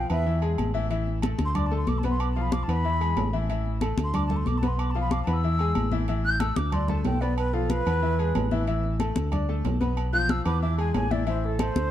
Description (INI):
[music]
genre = latin, salsa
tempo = 186 BPM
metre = 4/4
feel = straight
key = A harmonic minor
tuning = A4 = 438 Hz
[part]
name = mellow silver concert flute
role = melody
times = 0.0-11.9 s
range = A4 to G6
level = -30 LUFS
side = right 1 dB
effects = none
[part]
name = bright upright piano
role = accompaniment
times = 0.0-11.9 s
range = E3 to D6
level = -31 LUFS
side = left 4 dB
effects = none
[part]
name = fingered electric bass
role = bass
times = 0.0-11.9 s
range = A1 to E2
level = -26 LUFS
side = equal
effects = none
[part]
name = agogo bells and timbales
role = percussion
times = 0.1-11.9 s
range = none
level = -37 LUFS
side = right 6 dB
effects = none
[part]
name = congas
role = percussion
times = 0.1-11.9 s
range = none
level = -30 LUFS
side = left 2 dB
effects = none
[sound]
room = light reverb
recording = dark, warm production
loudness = -23 LUFS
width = side -11 dB against mid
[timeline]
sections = 0.0-11.9 A section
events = flute solo 0.0-11.9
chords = 0.3 E; 0.9 A5; 1.6 D5; 2.2 Bm7b5; 2.8 E; 3.5 A5; 4.1 D5; 4.8 Bm7b5; 5.4 E; 6.1 A5; 6.7 D5; 7.4 Fmaj7#11/B; 8.0 E; 8.7 A5; 9.3 D5; 10.0 Bdim; 10.6 E; 11.3 Am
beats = 0.26 0.58 | 0.91 1.23 1.55 1.87 | 2.20 2.52 2.84 3.17 | 3.49 3.81 4.14 4.46 | 4.78 5.11 5.43 5.75 | 6.08 6.40 6.72 7.05 | 7.37 7.70 8.02 8.34 | 8.67 8.99 9.32 9.64 | 9.97 10.29 10.62 10.94 | 11.27 11.59